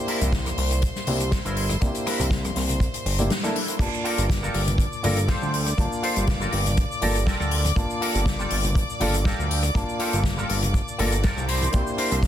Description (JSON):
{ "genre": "nu-disco, nu disco", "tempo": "121 BPM", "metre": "4/4", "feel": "swing 54% on 16ths", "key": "G dorian", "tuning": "A4 = 440 Hz", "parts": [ { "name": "dark baby grand piano", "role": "accompaniment", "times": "0.0-12.3 s", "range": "Bb3 to A5", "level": "-30 LUFS", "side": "equal", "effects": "sidechain pumping, analog delay" }, { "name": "rich chamber string section", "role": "sustained chords", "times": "0.0-12.3 s", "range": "C5 to D6", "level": "-32 LUFS", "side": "equal", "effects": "sidechain pumping" }, { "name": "electric guitar with an envelope filter", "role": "riff", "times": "0.1-12.2 s", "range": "D4 to C5", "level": "-30 LUFS", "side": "right 2 dB", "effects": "ensemble chorus, analog delay" }, { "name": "unplugged drum kit", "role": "drums", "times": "0.1-12.3 s", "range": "crash cymbal, hi-hat, rim click, shaker, snare drum", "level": "-29 LUFS", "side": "left 3 dB", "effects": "none" }, { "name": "fat analog bass", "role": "bass", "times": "0.2-12.3 s", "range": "G1 to D2", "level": "-25 LUFS", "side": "equal", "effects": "none" }, { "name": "congas", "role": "percussion", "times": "0.2-12.3 s", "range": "none", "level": "-34 LUFS", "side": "left 1 dB", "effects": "none" }, { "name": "kick drum", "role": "drums", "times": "0.3-12.3 s", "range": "none", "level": "-25 LUFS", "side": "equal", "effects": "none" } ], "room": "small room ambience", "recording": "dense, heavily limited modern master", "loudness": "-21 LUFS", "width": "side -11 dB against mid", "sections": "0.0-3.8 A section; 3.8-12.3 B section", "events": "band accent 3.3; drop 3.8-12.3", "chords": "0.0 C9; 3.8 Gm9; 11.5 C9" }